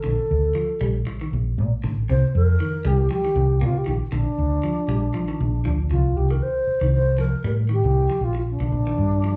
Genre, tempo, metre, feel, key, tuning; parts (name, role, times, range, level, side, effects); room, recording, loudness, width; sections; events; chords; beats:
afrobeat; 118 BPM; 4/4; swing 56% on 16ths; C dorian; A4 = 442 Hz
mellow wooden-headed alto flute; melody; 0.0-9.4 s; D4 to C5; -27 LUFS; equal; plate reverb, slapback echo
clean electric guitar; arpeggios; 0.0-9.4 s; C3 to Bb3; -32 LUFS; equal; lush chorus, plate reverb, slapback echo
hollow-body short-scale fingered electric bass; bass; 0.1-9.4 s; A1 to C3; -23 LUFS; equal
moderate club reverb, RT60 0.8 s; live gig heard through the venue's PA, club reverb; -22 LUFS; mono
0.0-6.2 A section; 6.2-9.4 B section
0.0 Bbmaj7; 2.1 Cm7; 4.1 Bb; 6.2 Cm; 8.2 Bb
| 0.05 0.56 1.07 1.58 | 2.09 2.60 3.11 3.62 | 4.13 4.64 5.15 5.66 | 6.17 6.68 7.19 7.70 | 8.21 8.72 9.23